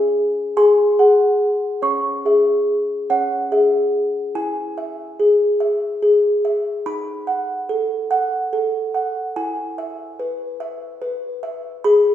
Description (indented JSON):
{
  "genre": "classical, lullaby for music box",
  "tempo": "48 BPM (dotted quarters)",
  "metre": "6/8",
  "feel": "straight",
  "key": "C# minor, E major from 4.4 s",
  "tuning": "A4 = 440 Hz",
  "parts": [
    { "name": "music box", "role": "solo", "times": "0.0-12.1 s", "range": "C#4 to C#6", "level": "-17 LUFS", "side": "left 1 dB", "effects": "none" }
  ],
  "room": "wet recital hall reverb, RT60 1.7 s",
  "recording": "heard from further back in the room",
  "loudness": "-16 LUFS",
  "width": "side -11 dB against mid",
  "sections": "0.0-4.4 A section; 4.4-12.1 B section",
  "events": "none",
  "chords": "0.0 C#m (rootless); 0.6 G#7; 1.8 C#m; 4.4 E; 6.9 B7/D#; 9.4 E"
}